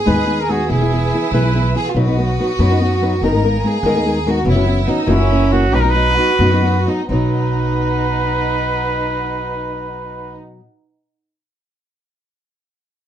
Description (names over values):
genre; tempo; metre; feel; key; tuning
mexican folk, mariachi; 83-97 BPM (dotted quarters); 6/8; straight; B major; A4 = 440 Hz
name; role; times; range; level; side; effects
rich chamber violin section; second line; 0.0-10.4 s; C#4 to A#4; -22 LUFS; right 3 dB; none
dark studio violin section; sustained chords; 0.0-10.4 s; A#3 to E6; -30 LUFS; left 1 dB; none
mellow trumpet; melody; 0.1-1.8, 5.1-10.4 s; E4 to B4; -20 LUFS; right 1 dB; none
nylon-string guitar; accompaniment; 0.1-10.6 s; F#2 to B4; -20 LUFS; left 3 dB; none
upright bass; bass; 0.1-10.4 s; E1 to F#2; -18 LUFS; equal; none
room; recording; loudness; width
light reverb; dark, warm production; -14 LUFS; side -10 dB against mid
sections
0.0-7.1 A section; 7.1-10.0 B section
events
slowing down 4.5-7.1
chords
0.0 G#m; 0.7 E; 1.9 B; 3.2 G#madd9; 4.5 F#7sus4; 5.1 F#7; 5.7 B